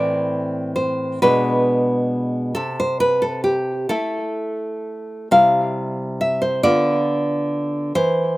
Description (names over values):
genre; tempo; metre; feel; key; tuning
romantic piece for solo classical guitar; 45 BPM (dotted quarters); 6/8; rubato; A minor; A4 = 440 Hz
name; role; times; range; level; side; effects
nylon-string guitar; solo; 0.0-8.4 s; A2 to F5; -18 LUFS; equal; slapback echo
room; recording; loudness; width
little or no reverb; recorded outdoors, with no room sound; -17 LUFS; side -19 dB against mid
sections
0.0-8.4 A section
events
none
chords
0.0 Am; 1.2 G#dim/B; 2.6 Am/C; 5.3 C; 6.6 Bdim/D